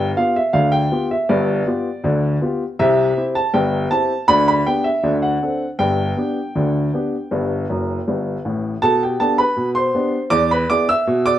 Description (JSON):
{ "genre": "ragtime piano", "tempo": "80 BPM", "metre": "2/4", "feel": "straight", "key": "G major", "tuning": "A4 = 440 Hz", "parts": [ { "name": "warm upright piano", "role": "solo", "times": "0.0-11.4 s", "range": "F#1 to E6", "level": "-16 LUFS", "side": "equal", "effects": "none" } ], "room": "moderate large studio reverb, RT60 0.9 s", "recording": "band playing live in one room", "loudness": "-16 LUFS", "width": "side -12 dB against mid", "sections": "0.0-8.8 A section; 8.8-11.4 B section", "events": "upright piano fill 7.7-8.8", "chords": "0.0 G7; 2.8 C; 4.3 G/D; 5.0 D7; 5.8 G; 8.8 G/B; 10.3 E7" }